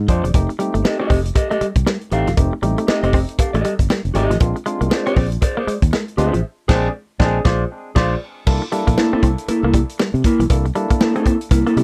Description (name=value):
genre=funk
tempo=118 BPM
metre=4/4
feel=swing 60% on 16ths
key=C mixolydian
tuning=A4 = 440 Hz
part: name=fingered electric bass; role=bass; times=0.0-11.8 s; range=E1 to C3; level=-22 LUFS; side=equal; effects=none
part: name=mellow electric guitar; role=accompaniment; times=0.1-11.8 s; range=Bb3 to F5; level=-22 LUFS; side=equal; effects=none
part: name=semi-hollow electric guitar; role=riff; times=0.1-11.8 s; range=E3 to C4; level=-26 LUFS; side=equal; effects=none
part: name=barky tine electric piano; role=stabs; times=0.1-11.3 s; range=Ab3 to D5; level=-27 LUFS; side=equal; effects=overdrive, tape echo
part: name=vintage drum kit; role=drums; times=0.1-11.8 s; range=crash cymbal, hi-hat, kick drum, snare drum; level=-20 LUFS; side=equal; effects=none
part: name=cowbell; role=percussion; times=0.3-11.7 s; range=none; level=-30 LUFS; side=equal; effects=none
room=light reverb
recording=dry, close 1970s-style studio recording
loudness=-18 LUFS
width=mono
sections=0.0-8.5 A section; 8.5-11.8 B section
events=band accent 6.4-8.5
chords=0.3 F9; 4.4 Bb9; 8.5 C13